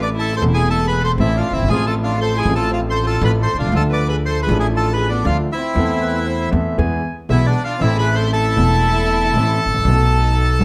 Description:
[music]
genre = tango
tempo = 118 BPM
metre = 4/4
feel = rubato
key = A harmonic minor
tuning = A4 = 440 Hz
[part]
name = bandoneon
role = melody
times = 0.0-10.6 s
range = D4 to D6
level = -22 LUFS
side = equal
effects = none
[part]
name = warm violin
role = second line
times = 0.0-9.8 s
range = B3 to B4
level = -28 LUFS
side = equal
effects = none
[part]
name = warm concert grand piano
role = accompaniment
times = 0.0-10.6 s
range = E1 to A4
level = -22 LUFS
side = equal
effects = none
[part]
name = upright bass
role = bass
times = 0.0-10.6 s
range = E1 to E2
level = -22 LUFS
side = equal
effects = none
[part]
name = warm clarinet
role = second line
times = 6.0-7.1 s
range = B4 to G#5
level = -29 LUFS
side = equal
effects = none
[part]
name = bright chamber string section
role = stabs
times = 7.8-10.6 s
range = A3 to E4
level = -31 LUFS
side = equal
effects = none
[sound]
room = moderate large studio reverb, RT60 1.2 s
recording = none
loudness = -17 LUFS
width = mono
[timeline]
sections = 0.0-10.6 A section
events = none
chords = 0.0 Am; 1.7 F/A; 3.7 Dm; 5.8 Am/E; 6.8 E; 7.8 Am; 9.8 B7

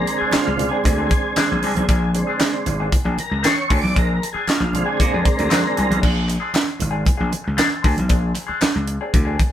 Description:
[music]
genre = funk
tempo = 116 BPM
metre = 4/4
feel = straight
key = Bb mixolydian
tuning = A4 = 440 Hz
[part]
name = semi-hollow electric guitar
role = accompaniment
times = 0.0-9.4 s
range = C4 to Ab4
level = -26 LUFS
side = left 4 dB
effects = wah, spring reverb
[part]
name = tonewheel organ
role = stabs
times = 0.0-6.0 s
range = D3 to D5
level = -22 LUFS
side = right 2 dB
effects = chorus vibrato, slow rotary speaker
[part]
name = gritty slap bass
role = bass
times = 0.0-9.4 s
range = Ab1 to Bb2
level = -22 LUFS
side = left 1 dB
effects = overdrive
[part]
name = tight funk drum kit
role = drums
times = 0.1-9.5 s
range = crash cymbal, handclaps, hi-hat, kick drum, snare drum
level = -19 LUFS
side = equal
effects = none
[part]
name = congas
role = percussion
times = 0.1-9.5 s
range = none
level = -30 LUFS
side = right 2 dB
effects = none
[part]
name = group handclap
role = percussion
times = 0.3-8.7 s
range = none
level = -31 LUFS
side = left 3 dB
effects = none
[sound]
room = moderate studio reverb, RT60 0.6 s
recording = band playing live in one room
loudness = -17 LUFS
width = side -11 dB against mid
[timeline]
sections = 0.0-6.0 A section; 6.0-9.5 B section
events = tonewheel organ solo 0.0-6.0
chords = 0.0 Bb9

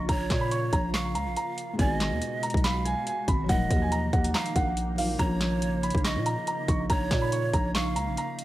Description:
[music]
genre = hip hop, trap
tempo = 141 BPM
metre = 4/4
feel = half-time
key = Bb phrygian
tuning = A4 = 440 Hz
[part]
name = dark grand piano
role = melody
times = 0.0-8.4 s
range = F5 to Db6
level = -32 LUFS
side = right 1 dB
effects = none
[part]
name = breathy large pan pipes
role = second line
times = 0.0-8.4 s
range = Db5 to F5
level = -34 LUFS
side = right 5 dB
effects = digital delay
[part]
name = felt-muted upright piano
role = accompaniment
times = 0.0-8.4 s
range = F3 to Gb4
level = -36 LUFS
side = left 3 dB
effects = none
[part]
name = glassy FM pad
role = sustained chords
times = 0.0-8.4 s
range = Cb3 to Gb4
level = -37 LUFS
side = right 1 dB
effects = ensemble chorus, built-in reverb
[part]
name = growling 808-style bass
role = bass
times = 0.0-8.2 s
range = Eb1 to Bb2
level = -29 LUFS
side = equal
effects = none
[part]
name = trap drum kit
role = drums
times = 0.1-8.4 s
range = handclaps, hi-hat, kick drum, snare drum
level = -28 LUFS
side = equal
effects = none
[sound]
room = studio ambience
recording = vinyl crackle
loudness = -24 LUFS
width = side -15 dB against mid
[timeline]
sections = 0.0-8.4 A section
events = none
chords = 0.0 Bbm; 1.8 Abm7; 3.5 Ebmadd9; 5.2 Bbm

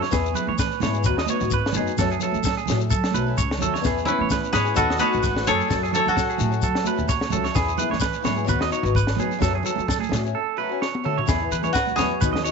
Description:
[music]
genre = highlife guitar band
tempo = 129 BPM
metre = 4/4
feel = swing 54% on 16ths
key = E major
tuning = A4 = 440 Hz
[part]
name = koto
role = melody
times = 0.0-1.0, 4.1-8.2, 11.7-12.5 s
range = C#4 to C#5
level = -23 LUFS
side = equal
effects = none
[part]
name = picked acoustic archtop guitar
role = accompaniment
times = 0.0-12.5 s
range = E3 to A4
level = -28 LUFS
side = left 16 dB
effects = none
[part]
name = clean electric guitar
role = arpeggios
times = 0.0-12.5 s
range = G#4 to D#5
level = -26 LUFS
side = right 14 dB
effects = tape echo
[part]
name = compact cocktail drum kit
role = drums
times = 0.0-12.4 s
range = kick drum, snare drum, toms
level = -28 LUFS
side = left 1 dB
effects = none
[part]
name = shekere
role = percussion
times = 0.0-12.5 s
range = none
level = -30 LUFS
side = left 7 dB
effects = none
[part]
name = upright bass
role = bass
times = 0.1-12.5 s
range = G#1 to F#3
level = -27 LUFS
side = equal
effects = none
[part]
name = congas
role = percussion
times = 0.3-12.4 s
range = none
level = -30 LUFS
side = right 16 dB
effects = none
[part]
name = clear alto saxophone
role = second line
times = 4.1-7.0 s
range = B3 to A4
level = -31 LUFS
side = left 13 dB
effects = none
[sound]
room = light reverb, small room ambience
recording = 1960s-style stereo with parts hard left and right, nothing above 7.8 kHz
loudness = -20 LUFS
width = side -5 dB against mid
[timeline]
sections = 0.0-11.3 A section; 11.3-12.5 B section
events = drum fill 10.8-11.3; koto solo 11.3-12.5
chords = 0.1 E; 1.0 B; 2.0 F#m; 3.8 E; 4.8 B; 5.7 F#m; 7.6 E; 8.5 B; 9.4 F#m; 11.3 E

